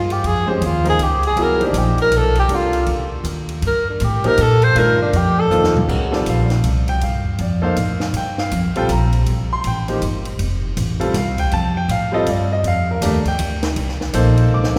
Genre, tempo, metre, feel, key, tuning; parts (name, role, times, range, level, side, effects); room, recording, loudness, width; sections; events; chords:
modal jazz; 160 BPM; 3/4; swing 64% on 8ths; C dorian from 5.9 s; A4 = 441 Hz
mellow tenor saxophone; melody; 0.0-5.8 s; C4 to C5; -20 LUFS; equal
upright bass; bass; 0.0-14.8 s; F1 to Bb2; -21 LUFS; equal
compact cocktail drum kit; drums; 0.1-14.8 s; crash cymbal, hi-hat, kick drum, ride cymbal, snare drum, toms; -30 LUFS; equal
clear grand piano; accompaniment; 0.5-14.8 s; Eb3 to D6; -24 LUFS; equal
wet church reverb, RT60 2.8 s; recorded in a church or concert hall; -18 LUFS; mono
0.0-5.9 A section; 5.9-14.8 A section
tenor saxophone solo 0.0-5.9; drum fill 5.5-5.9, 14.5
0.0 Bbm7; 1.4 Cm9; 5.9 C13sus4